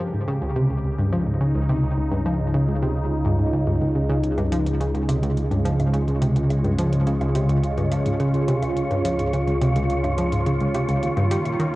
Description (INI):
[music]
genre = ambient, sequencer-driven space music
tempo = 106 BPM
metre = 4/4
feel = straight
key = unclear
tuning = A4 = 440 Hz
[part]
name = phased analog pad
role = sustained chords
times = 0.0-11.8 s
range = Db3 to Bb4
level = -23 LUFS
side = equal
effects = phaser, chorus
[part]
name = analog pluck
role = riff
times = 0.0-11.7 s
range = Db2 to G3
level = -23 LUFS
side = equal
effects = chorus, tape echo
[part]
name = warm sub bass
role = bass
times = 0.0-11.8 s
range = Db2 to Eb2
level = -29 LUFS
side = equal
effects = none
[part]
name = wind-like tuned noise texture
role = texture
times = 0.0-11.8 s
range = Ab3 to Db5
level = -35 LUFS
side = left 1 dB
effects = built-in reverb
[part]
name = electronic hi-hat and woodblock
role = percussion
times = 4.2-11.7 s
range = none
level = -40 LUFS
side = right 1 dB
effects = tape echo
[sound]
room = moderate plate reverb, RT60 3.1 s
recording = worn, warbling old tape, cassette tape, warbly pitch drift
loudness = -19 LUFS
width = side -18 dB against mid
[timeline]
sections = 0.0-11.8 A section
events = none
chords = 0.0 Db; 11.0 Eb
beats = 0.28 0.84 1.41 | 1.97 2.54 3.10 3.67 | 4.24 4.80 5.37 5.93 | 6.50 7.07 7.63 8.20 | 8.77 9.33 9.90 10.46 | 11.03 11.60